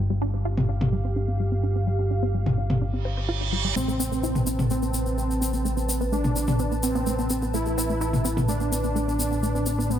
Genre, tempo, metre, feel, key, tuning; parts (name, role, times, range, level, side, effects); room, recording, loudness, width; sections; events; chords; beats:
melodic techno; 127 BPM; 4/4; straight; A minor; A4 = 438 Hz
warm analog pad; sustained chords; 0.3-10.0 s; G4 to A5; -34 LUFS; right 2 dB; chorus
wide unison pluck; arpeggios; 0.0-10.0 s; G3 to C5; -30 LUFS; equal; ping-pong delay
fat analog bass; bass; 0.0-10.0 s; G1 to A1; -26 LUFS; equal
electronic toms; drums; 0.6-8.5 s; -25 LUFS; left 1 dB; low-pass filter on toms, low-pass filter on room
reverse cymbal; sound effects; 3.0-3.8 s; -30 LUFS; right 8 dB
wide unison lead; melody; 3.8-10.0 s; B3 to E4; -28 LUFS; right 1 dB; digital delay
egg shaker; percussion; 3.8-10.0 s; -33 LUFS; left 2 dB
light reverb; bright 1980s-style digital production; -22 LUFS; side -10 dB against mid
0.0-10.0 A section
reverse cymbal 3.0-3.8
0.0 G7sus4; 3.8 Amadd9
0.45 0.93 1.40 | 1.87 2.34 2.82 3.29 | 3.76 4.23 4.71 5.18 | 5.65 6.12 6.59 7.07 | 7.54 8.01 8.48 8.96 | 9.43 9.90